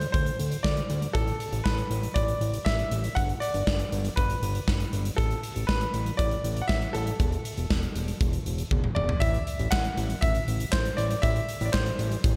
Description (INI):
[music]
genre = synth-pop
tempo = 119 BPM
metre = 4/4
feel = straight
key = A dorian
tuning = A4 = 440 Hz
[part]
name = bright grand piano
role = melody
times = 0.0-12.4 s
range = A4 to F#5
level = -34 LUFS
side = equal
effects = slapback echo, digital delay
[part]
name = fat analog bass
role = bass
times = 0.0-12.4 s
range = E1 to D2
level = -32 LUFS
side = equal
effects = none
[part]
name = huge arena drum kit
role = drums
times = 0.0-12.4 s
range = handclaps, hi-hat, kick drum, snare drum, toms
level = -30 LUFS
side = equal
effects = none
[sound]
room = moderate lush hall reverb, RT60 2.3 s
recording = big arena sound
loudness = -27 LUFS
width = mono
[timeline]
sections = 0.0-9.2 A section; 9.2-12.4 B section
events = drum fill 8.7-9.2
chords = 0.0 Csus2/D; 1.1 Asus2; 3.2 G; 5.2 Asus2; 7.2 Esus4; 9.2 Am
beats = 0.14 0.64 | 1.15 1.65 2.16 2.66 | 3.17 3.67 4.17 4.68 | 5.18 5.69 6.19 6.70 | 7.20 7.70 8.21 8.71 | 9.22 9.72 10.22 10.73 | 11.23 11.74 12.24